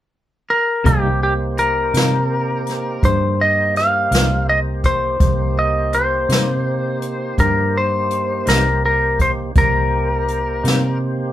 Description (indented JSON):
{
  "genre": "slow blues",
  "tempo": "55 BPM (dotted quarters)",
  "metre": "12/8",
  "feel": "straight",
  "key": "C minor",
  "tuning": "A4 = 442 Hz",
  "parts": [
    { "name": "clean lap steel guitar", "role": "melody", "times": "0.5-11.0 s", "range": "G4 to F5", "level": "-18 LUFS", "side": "left 1 dB", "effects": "none" },
    { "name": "clean electric guitar", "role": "accompaniment", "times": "0.8-10.9 s", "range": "C3 to Eb4", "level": "-23 LUFS", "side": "left 2 dB", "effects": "tremolo" },
    { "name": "tonewheel organ", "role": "sustained chords", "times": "0.9-11.3 s", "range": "Bb3 to C5", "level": "-26 LUFS", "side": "right 2 dB", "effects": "slow rotary speaker, overdrive, chorus vibrato" },
    { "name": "vintage muted fingered electric bass", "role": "bass", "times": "0.9-11.3 s", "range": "C2 to C3", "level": "-21 LUFS", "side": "equal", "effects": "none" },
    { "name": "jazz brush drum kit", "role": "drums", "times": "0.9-10.8 s", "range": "hi-hat, kick drum, snare drum", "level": "-19 LUFS", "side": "equal", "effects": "none" }
  ],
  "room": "moderate studio reverb, RT60 0.5 s",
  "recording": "band playing live in one room",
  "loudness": "-15 LUFS",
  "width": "side -12 dB against mid",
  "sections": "0.8-11.3 A section",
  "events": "none",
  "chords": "0.0 N.C.; 0.8 Cm7"
}